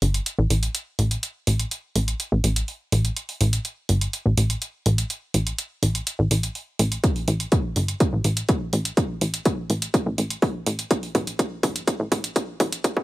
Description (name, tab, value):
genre	melodic techno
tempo	124 BPM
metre	4/4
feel	straight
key	unclear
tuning	A4 = 440 Hz
part	plucky analog bass	bass	0.0-12.8 s	G1 to A1	-22 LUFS	equal	sidechain pumping
part	electronic hi-hat	drums	0.0-12.9 s	none	-27 LUFS	right 2 dB	none
part	electronic kick drum	drums	7.0-13.0 s	none	-22 LUFS	equal	none
room	little or no reverb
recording	high-pass filter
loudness	-21 LUFS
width	side -18 dB against mid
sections	0.0-13.0 A section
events	build-up 0.0-13.0; drum fill 7.0-13.0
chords	none